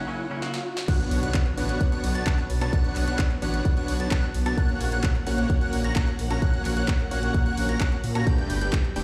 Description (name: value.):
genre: EDM, festival progressive house.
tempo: 130 BPM.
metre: 4/4.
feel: straight.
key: B minor.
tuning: A4 = 440 Hz.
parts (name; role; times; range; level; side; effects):
clean electric guitar; accompaniment; 0.0-0.6 s; C#3 to F#4; -38 LUFS; equal; analog chorus, sidechain pumping, digital delay.
riser and impact; sound effects; 0.0-2.7 s; none; -37 LUFS; equal; none.
house drum kit; drums; 0.4-9.0 s; crash cymbal, handclaps, hi-hat, snare drum, woodblock; -37 LUFS; equal; high-pass filter on snare, studio reverb, high-pass filter on hats, high-pass filter on perc, high-pass filter on cymbals.
rich symphonic string section; sustained chords; 0.9-9.0 s; G3 to F#5; -39 LUFS; equal; sidechain pumping.
plucky unison lead; arpeggios; 0.9-9.0 s; F#6 to A#6; -37 LUFS; equal; lush chorus, sidechain pumping, digital delay.
dense compressed supersaw; riff; 0.9-9.0 s; A3 to A#5; -33 LUFS; equal; sidechain pumping, digital delay.
electronic kick drum; drums; 0.9-8.8 s; none; -26 LUFS; equal; studio reverb.
detuned saw bass; bass; 1.1-9.0 s; D1 to A#2; -29 LUFS; equal; chorus, sidechain pumping.
room: digital ambience.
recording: played on a big sound system in a bare room, large studio reverb.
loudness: -25 LUFS.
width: mono.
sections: 0.9-9.0 A section.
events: break 0.0-0.9; riser 0.0-0.9; drum fill 0.4-0.9; drop 0.9-9.0; impact 0.9-2.7.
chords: 0.0 F#; 0.9 Bmadd9; 4.6 F#/A#; 8.3 Gadd9.